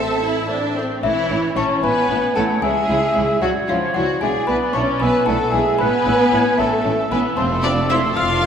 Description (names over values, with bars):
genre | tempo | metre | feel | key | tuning
cinematic, playful, whimsical film cue | 76 BPM (dotted quarters) | 6/8 | straight | A major | A4 = 440 Hz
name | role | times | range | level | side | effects
warm studio violin section | melody | 0.0-8.5 s | E4 to A5 | -26 LUFS | left 2 dB | none
worn celesta | melody | 0.0-8.5 s | E5 to F6 | -24 LUFS | left 5 dB | none
clear oboe | second line | 0.0-8.5 s | C#5 to F#5 | -27 LUFS | right 1 dB | none
mellow clarinet | second line | 0.0-8.5 s | C4 to F5 | -24 LUFS | right 1 dB | none
rich studio violin section | second line | 0.0-8.4 s | A3 to E5 | -29 LUFS | left 2 dB | none
silver concert flute | second line | 0.0-8.5 s | C#5 to C6 | -24 LUFS | equal | none
dark bassoon | accompaniment | 0.0-0.7 s | A3 | -31 LUFS | right 4 dB | none
rich studio viola section | accompaniment | 0.0-8.5 s | E3 to F4 | -22 LUFS | right 1 dB | none
warm French horn section | sustained chords | 0.0-8.5 s | A3 to A4 | -29 LUFS | left 2 dB | none
rich studio cello section | bass | 0.0-8.5 s | F2 to A4 | -31 LUFS | right 3 dB | none
warm studio double bass section | bass | 0.0-8.5 s | F1 to C#2 | -27 LUFS | right 3 dB | none
room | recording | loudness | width
wet scoring stage reverb, RT60 1.8 s | none | -16 LUFS | side -7 dB against mid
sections
0.0-1.0 A section; 1.0-8.5 B section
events
none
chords
0.0 Am; 1.0 A; 2.6 C#madd11; 4.2 E5/B; 5.8 A; 7.4 F